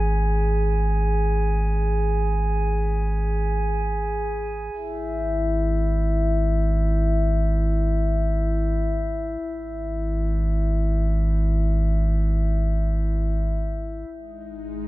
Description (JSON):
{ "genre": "ambient", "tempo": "free time", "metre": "none", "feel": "none", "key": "unclear", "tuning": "A4 = 439 Hz", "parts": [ { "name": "warm sub bass", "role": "bass", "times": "0.0-14.9 s", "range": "G#1", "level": "-22 LUFS", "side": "equal", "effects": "none" }, { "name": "glass harmonica", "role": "texture", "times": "0.0-14.1 s", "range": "E4 to G#5", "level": "-27 LUFS", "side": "left 1 dB", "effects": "none" }, { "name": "bowed-like drone", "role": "drone", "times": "14.3-14.9 s", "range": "G#3 to D#4", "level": "-33 LUFS", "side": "left 4 dB", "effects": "built-in reverb, phaser" } ], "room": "light reverb", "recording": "none", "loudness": "-21 LUFS", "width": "side -18 dB against mid", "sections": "0.0-14.1 A section", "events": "fade-out on glass harmonica 0.0-14.1", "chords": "0.0 N.C.; 4.7 E/G#; 14.1 G#5" }